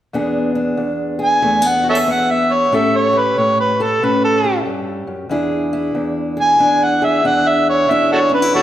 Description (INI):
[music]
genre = acoustic country blues, solo or duo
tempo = 93 BPM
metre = 4/4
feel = swing 64% on 8ths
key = E mixolydian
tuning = A4 = 440 Hz
[part]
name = fingerpicked steel-string acoustic guitar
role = accompaniment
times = 0.1-8.6 s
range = E2 to A4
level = -18 LUFS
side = left 1 dB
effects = none
[part]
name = overdriven harmonica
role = melody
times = 1.2-8.6 s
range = F#4 to G#5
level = -14 LUFS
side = equal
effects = none
[sound]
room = wet recital hall reverb, RT60 1.6 s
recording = recorded in a church or concert hall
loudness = -13 LUFS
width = side -12 dB against mid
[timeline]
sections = 0.1-8.6 A section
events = harmonica solo 0.1-8.6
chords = 0.1 E7; 2.7 A7; 5.3 E7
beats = | 0.14 0.79 1.44 2.08 | 2.73 3.38 4.02 4.67 | 5.32 5.96 6.61 7.26 | 7.91 8.55